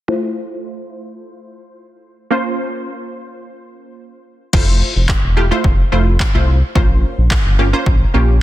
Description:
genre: dance-pop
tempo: 108 BPM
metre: 4/4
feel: straight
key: F major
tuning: A4 = 440 Hz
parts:
  - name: punchy chord stab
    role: accompaniment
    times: 0.1-8.4 s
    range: A3 to C5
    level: -20 LUFS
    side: equal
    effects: chorus, sidechain pumping, low-pass filter
  - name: round analog bass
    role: bass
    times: 4.5-8.4 s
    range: E1 to C2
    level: -14 LUFS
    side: equal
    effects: sidechain pumping
  - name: punchy analog drum machine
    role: drums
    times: 4.5-8.0 s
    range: crash cymbal, handclaps, kick drum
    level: -16 LUFS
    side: equal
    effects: none
room: digital ambience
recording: dense, heavily limited modern master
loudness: -13 LUFS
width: side -15 dB against mid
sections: 0.1-4.5 A section; 4.5-8.4 B section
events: filter sweep on synth stab 0.1-4.5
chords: 0.1 Fmaj7; 2.3 Bbmadd9; 4.5 Fmaj7; 6.8 Bbmadd9

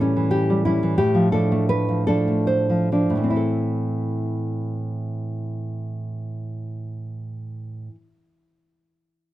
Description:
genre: romantic piece for solo classical guitar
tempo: 66-95 BPM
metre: 3/4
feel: rubato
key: A minor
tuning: A4 = 440 Hz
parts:
  - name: nylon-string guitar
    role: solo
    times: 0.0-8.1 s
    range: A2 to C5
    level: -21 LUFS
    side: equal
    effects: none
room: moderate small room reverb, RT60 0.5 s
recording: none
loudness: -20 LUFS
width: side -15 dB against mid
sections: 0.0-3.4 A section; 3.4-8.6 B section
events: slowing down 0.0-3.4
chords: 0.0 A7; 1.0 Dm/A; 3.4 Am

